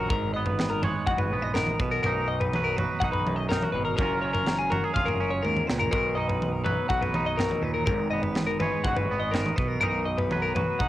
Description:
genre	math rock and midwest emo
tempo	123 BPM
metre	4/4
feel	straight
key	B lydian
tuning	A4 = 441 Hz
part	twangy electric guitar	accompaniment	0.0-10.9 s	F#2 to C#5	-30 LUFS	right 4 dB	cassette tape
part	twelve-string electric guitar	arpeggios	0.0-10.9 s	G#4 to F#5	-28 LUFS	left 4 dB	cassette tape
part	growling fingered electric bass	bass	0.0-10.9 s	E#1 to D#2	-33 LUFS	equal	overdrive
part	crisp fusion drum kit	drums	0.1-10.9 s	kick drum, snare drum, toms	-29 LUFS	equal	cassette tape
room	small room ambience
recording	home recording on cassette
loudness	-24 LUFS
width	side -14 dB against mid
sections	0.0-10.9 A section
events	drum fill 5.4-5.9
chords	0.1 G#m9; 1.8 Bmaj7; 4.0 F#maj9; 5.9 Bmaj7; 7.9 G#m9; 9.6 Bmaj7

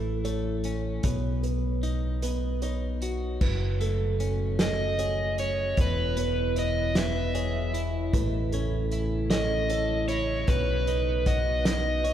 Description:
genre	post-rock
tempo	51 BPM (dotted quarters)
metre	6/8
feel	straight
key	A lydian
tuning	A4 = 440 Hz
part	felt-muted upright piano	arpeggios	0.0-12.1 s	A4 to D#5	-36 LUFS	right 8 dB	none
part	twelve-string electric guitar	arpeggios	0.0-12.1 s	E2 to C#5	-34 LUFS	left 5 dB	none
part	deep dub fingered electric bass	bass	0.0-12.1 s	E1 to B1	-29 LUFS	equal	none
part	loose indie drum kit	drums	0.2-12.1 s	crash cymbal, hi-hat, kick drum, snare drum	-30 LUFS	equal	none
part	dark analog pad	sustained chords	3.4-12.1 s	A2 to F#4	-37 LUFS	right 1 dB	chorus
part	crunchy overdriven guitar	melody	4.6-12.1 s	B4 to E5	-29 LUFS	right 1 dB	none
room	wet cathedral reverb, RT60 4.7 s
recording	recorded in a church or concert hall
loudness	-25 LUFS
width	side -10 dB against mid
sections	0.0-3.4 A section; 3.4-12.1 B section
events	none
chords	0.0 A; 1.0 Badd9; 3.4 F#madd9; 5.8 E; 8.1 A; 10.5 Badd9

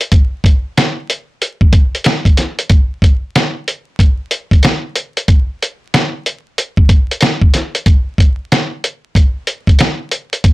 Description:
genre	hip hop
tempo	93 BPM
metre	4/4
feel	swing 62% on 16ths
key	none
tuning	none
part	dusty soul sampler-style drum kit	drums	0.0-10.5 s	hi-hat, kick drum, snare drum	-10 LUFS	equal	vintage 12-bit sampler grit
room	light reverb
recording	blown-out, overdriven recording, vinyl crackle, overdrive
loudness	-12 LUFS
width	side -20 dB against mid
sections	0.0-10.5 A section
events	none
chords	none

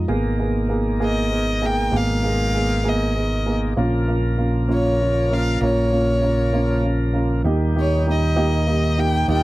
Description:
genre	six-eight pop ballad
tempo	65 BPM (dotted quarters)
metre	6/8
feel	straight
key	Eb mixolydian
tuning	A4 = 443 Hz
part	dark upright piano	accompaniment	0.0-9.4 s	Bb3 to Ab4	-22 LUFS	right 2 dB	none
part	fingered electric bass	bass	0.0-9.4 s	Ab1 to Eb2	-21 LUFS	equal	none
part	bright tonewheel organ	sustained chords	0.1-9.4 s	Bb2 to Bb4	-29 LUFS	equal	slow rotary speaker
part	rich violin	melody	1.0-9.4 s	Db5 to G5	-24 LUFS	left 1 dB	none
room	small room reverb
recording	dry, close 1970s-style studio recording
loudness	-18 LUFS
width	side -18 dB against mid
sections	0.0-7.5 A section; 7.5-9.4 B section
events	none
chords	0.1 Abmadd9; 3.8 Bbm; 7.5 Eb

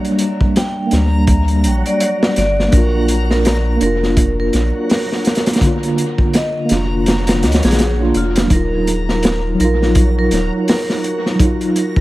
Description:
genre	trip hop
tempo	83 BPM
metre	4/4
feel	swing 58% on 16ths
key	Eb harmonic minor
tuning	A4 = 440 Hz
part	mellow tine electric piano	accompaniment	0.0-12.0 s	D3 to F4	-18 LUFS	equal	slow stereo tremolo, tape echo
part	crunchy breakbeat drum kit	drums	0.0-12.0 s	hi-hat, kick drum, snare drum	-17 LUFS	equal	dub echo
part	backwards swelling texture	texture	0.0-12.0 s	Gb3 to Bb5	-28 LUFS	equal	built-in reverb
part	vibraphone with medium hard mallets	melody	0.6-11.2 s	F4 to G5	-22 LUFS	right 1 dB	dub echo
part	soft dub sub bass	bass	0.9-10.5 s	Eb1 to D2	-17 LUFS	equal	none
room	small room ambience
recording	echo-heavy mix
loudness	-13 LUFS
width	side -17 dB against mid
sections	0.0-12.0 A section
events	none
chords	0.0 Gm; 2.7 Bb; 8.5 Ebmadd9

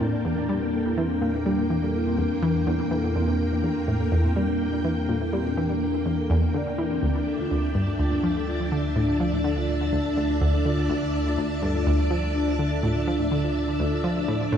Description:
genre	ambient, sequencer-driven space music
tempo	124 BPM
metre	4/4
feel	straight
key	unclear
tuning	A4 = 441 Hz
part	string machine, full ensemble	sustained chords	0.0-14.6 s	Bb3 to A5	-28 LUFS	equal	ensemble chorus
part	vibraphone with soft mallets	arpeggios	0.0-14.6 s	C4 to D5	-28 LUFS	left 2 dB	auto-pan, tape echo
part	analog pluck	riff	0.0-14.6 s	D2 to G3	-26 LUFS	equal	chorus, tape echo
part	round analog bass	bass	0.0-14.6 s	D2 to E2	-30 LUFS	equal	tube saturation
room	wet cathedral reverb, RT60 6.2 s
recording	in a vast, echoing space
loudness	-22 LUFS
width	side -8 dB against mid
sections	0.0-14.6 A section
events	none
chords	0.0 Edim; 7.0 Dmadd9

